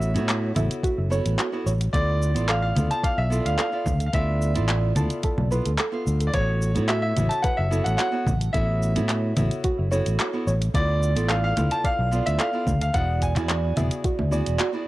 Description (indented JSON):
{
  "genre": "sunset chillout",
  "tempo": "109 BPM",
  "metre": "4/4",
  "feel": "straight",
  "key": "A major",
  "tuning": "A4 = 438 Hz",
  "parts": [
    { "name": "bright concert grand piano", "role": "melody", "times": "0.0-14.0 s", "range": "C#5 to A5", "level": "-28 LUFS", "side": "left 1 dB", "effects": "analog delay" },
    { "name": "nylon-string guitar", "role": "accompaniment", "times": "0.0-14.9 s", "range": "B3 to F5", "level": "-29 LUFS", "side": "moving between left 1 dB and right 5 dB", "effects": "auto-pan" },
    { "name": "fingered electric bass", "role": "bass", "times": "0.0-14.6 s", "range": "E1 to A2", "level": "-23 LUFS", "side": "equal", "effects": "tube saturation" },
    { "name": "smooth R&B drum kit", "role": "drums", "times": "0.0-14.7 s", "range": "congas, handclaps, hi-hat, shaker", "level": "-28 LUFS", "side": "equal", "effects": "none" },
    { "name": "soft round pluck", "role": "arpeggios", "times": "0.6-14.8 s", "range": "F#4 to A5", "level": "-32 LUFS", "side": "right 2 dB", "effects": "chorus, analog delay" },
    { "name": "electronic kick drum", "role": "drums", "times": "0.8-14.2 s", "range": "none", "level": "-25 LUFS", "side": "equal", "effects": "none" }
  ],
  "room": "little or no reverb",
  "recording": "dry, gritty hardware recording, cassette tape",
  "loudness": "-21 LUFS",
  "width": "side -17 dB against mid",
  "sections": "0.0-14.9 A section",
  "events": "none",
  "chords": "0.0 A69; 1.9 Dm6; 6.3 A69; 10.7 Dm6; 12.9 E9",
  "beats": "0.28 0.83 1.39 | 1.94 2.49 3.04 3.59 | 4.14 4.69 5.24 5.79 | 6.34 6.89 7.44 7.99 | 8.54 9.09 9.64 10.19 | 10.74 11.29 11.84 12.39 | 12.95 13.49 14.05 14.60"
}